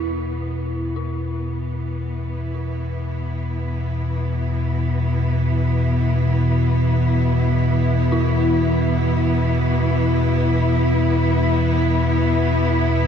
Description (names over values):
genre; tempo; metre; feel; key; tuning
dark ambient drone; free time; none; none; unclear; A4 = 440 Hz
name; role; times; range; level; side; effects
rich studio cello section; sustained chords; 0.0-13.1 s; E3 to E4; -24 LUFS; equal; none
dark detuned synth bell; arpeggios; 0.0-13.1 s; E4; -30 LUFS; left 1 dB; chorus, phaser, ping-pong delay
deep rumbling drone; drone; 0.0-13.1 s; E2 to B2; -19 LUFS; equal; built-in reverb
room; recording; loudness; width
wet huge ambient reverb, RT60 8.3 s; none; -18 LUFS; side -7 dB against mid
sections
0.0-13.1 A section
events
fade-in on cello section 0.0-13.1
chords
0.0 E5